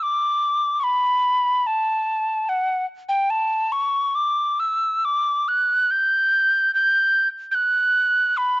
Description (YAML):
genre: celtic folk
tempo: 72 BPM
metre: 3/4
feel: uneven beats, rubato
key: unclear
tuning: A4 = 441 Hz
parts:
  - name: mellow hollow mid whistle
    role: solo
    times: 0.0-8.6 s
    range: F#5 to G6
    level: -18 LUFS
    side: equal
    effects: slapback echo
room: little or no reverb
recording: recorded outdoors, with no room sound, nothing above 7.8 kHz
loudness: -18 LUFS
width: side -18 dB against mid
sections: 0.0-8.6 A section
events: none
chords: none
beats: | 0.04 0.85 1.68 | 2.51 3.33 4.17 | 5.05 5.91 6.75 | 7.58 8.39